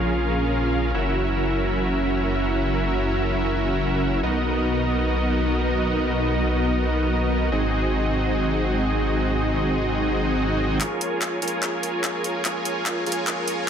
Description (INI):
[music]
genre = future bass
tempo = free time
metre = none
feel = none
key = Bb minor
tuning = A4 = 440 Hz
[part]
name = dense compressed supersaw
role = riff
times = 0.0-13.7 s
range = B3 to Ab5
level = -22 LUFS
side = right 1 dB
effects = low-pass filter, tape echo
[part]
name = wide detuned saw bass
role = bass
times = 0.0-10.8 s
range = Gb1 to B1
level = -25 LUFS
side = left 1 dB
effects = chorus
[part]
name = big-room dance drum kit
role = drums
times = 10.8-13.6 s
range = handclaps, hi-hat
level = -27 LUFS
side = left 1 dB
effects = overdrive, high-pass filter on snare, high-pass filter on hats
[sound]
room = light reverb, digital ambience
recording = none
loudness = -20 LUFS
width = side -8 dB against mid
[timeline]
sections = 0.0-10.8 A section; 10.8-13.7 B section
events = build-up 10.8-13.7; drum fill 10.8-13.7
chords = 0.0 Bbm7; 0.9 Gb7; 4.2 Bmaj7; 7.5 Ab7; 10.8 Bbm7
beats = free time